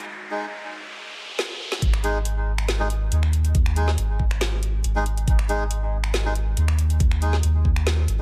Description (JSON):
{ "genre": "deep dubstep", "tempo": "139 BPM", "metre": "4/4", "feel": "half-time", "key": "unclear", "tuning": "A4 = 439 Hz", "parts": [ { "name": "garage drum kit", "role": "drums", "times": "0.0-8.2 s", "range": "finger snaps, hi-hat, snare drum", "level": "-32 LUFS", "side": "equal", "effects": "none" }, { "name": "riser", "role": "sound effects", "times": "0.0-1.8 s", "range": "none", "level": "-36 LUFS", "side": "equal", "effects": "none" }, { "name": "melodica", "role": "stabs", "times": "0.3-8.2 s", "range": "G#3 to G#4", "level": "-32 LUFS", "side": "equal", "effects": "dub echo" }, { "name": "soft dub sub bass", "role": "bass", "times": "1.8-8.2 s", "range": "G#1 to D#2", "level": "-24 LUFS", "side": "equal", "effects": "tube saturation" }, { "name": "electronic kick drum", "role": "drums", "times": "1.8-7.7 s", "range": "none", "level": "-23 LUFS", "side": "equal", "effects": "none" } ], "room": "digital ambience", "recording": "high-pass filter", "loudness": "-23 LUFS", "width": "mono", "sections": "0.0-1.8 A section; 1.8-8.2 B section", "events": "build-up 0.0-1.8; riser 0.0-1.8; filter sweep 0.0-1.8; drum fill 1.4-1.8; drop 1.8-8.2", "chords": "0.0 G#5", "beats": "| 0.10 0.53 0.96 1.39 | 1.82 2.25 2.69 3.12 | 3.55 3.98 4.41 4.84 | 5.28 5.71 6.14 6.57 | 7.00 7.43 7.87" }